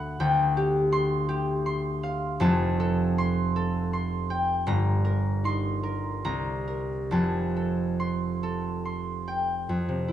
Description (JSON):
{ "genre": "classical, solo harp piece", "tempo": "68-83 BPM", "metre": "3/4", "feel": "rubato", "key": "F major", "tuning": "A4 = 442 Hz", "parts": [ { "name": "concert harp", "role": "solo", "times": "0.0-10.1 s", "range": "F1 to C6", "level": "-24 LUFS", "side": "equal", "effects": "none" } ], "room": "wet recital hall reverb, RT60 1.5 s", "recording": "dark, warm production", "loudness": "-24 LUFS", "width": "side -11 dB against mid", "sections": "0.0-9.7 A section", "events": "none", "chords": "0.2 Dm7; 2.4 Fadd9; 4.7 Gm11; 6.2 C7(no3); 7.1 Fadd9" }